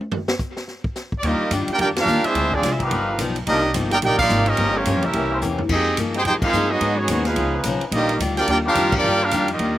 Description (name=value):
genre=jazz, big band swing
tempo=215 BPM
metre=4/4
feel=swing 61% on 8ths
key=Eb major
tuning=A4 = 436 Hz
part: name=swinging big-band drum kit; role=drums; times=0.0-9.7 s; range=crash cymbal, hi-hat, kick drum, ride cymbal, snare drum, toms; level=-28 LUFS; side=equal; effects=none
part: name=bright trumpet section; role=melody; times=1.2-9.8 s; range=Bb3 to G5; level=-21 LUFS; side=right 1 dB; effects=slapback echo
part: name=picked steel-string acoustic guitar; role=accompaniment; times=1.2-9.8 s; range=G2 to Ab4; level=-26 LUFS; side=left 4 dB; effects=none
part: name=upright bass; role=bass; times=1.2-9.8 s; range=G1 to Ab2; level=-25 LUFS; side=equal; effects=none
part: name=warm trombone section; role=second line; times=1.3-9.8 s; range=Eb3 to G4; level=-26 LUFS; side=right 2 dB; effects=none
part: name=muted trombone section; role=sustained chords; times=2.5-9.0 s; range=F3 to C5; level=-26 LUFS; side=left 2 dB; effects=none
room=little or no reverb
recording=recorded outdoors, with no room sound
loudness=-18 LUFS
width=side -14 dB against mid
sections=0.0-1.2 A section; 1.2-9.8 B section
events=drum solo 0.0-1.2; band accent 1.9, 4.2, 6.4, 8.9; drum fill 5.4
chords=0.0 N.C.; 1.2 Ebmaj9; 2.4 Dm7b5; 2.9 G7alt; 3.5 Cm11; 4.6 Gm7b5; 5.1 C7b9; 5.7 Fm11; 6.8 Abm7; 7.4 Db9; 7.9 Ebmaj9